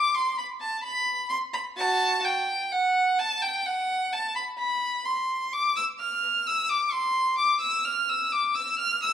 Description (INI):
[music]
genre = classical, baroque-style suite movement for unaccompanied violin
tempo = 64 BPM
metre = 4/4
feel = rubato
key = unclear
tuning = A4 = 440 Hz
[part]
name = clear violin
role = solo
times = 0.0-9.1 s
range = F#4 to F6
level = -24 LUFS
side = equal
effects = none
[sound]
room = moderate recital hall reverb, RT60 1.6 s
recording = dark, warm production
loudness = -24 LUFS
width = side -9 dB against mid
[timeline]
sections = 0.0-9.1 A section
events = none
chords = none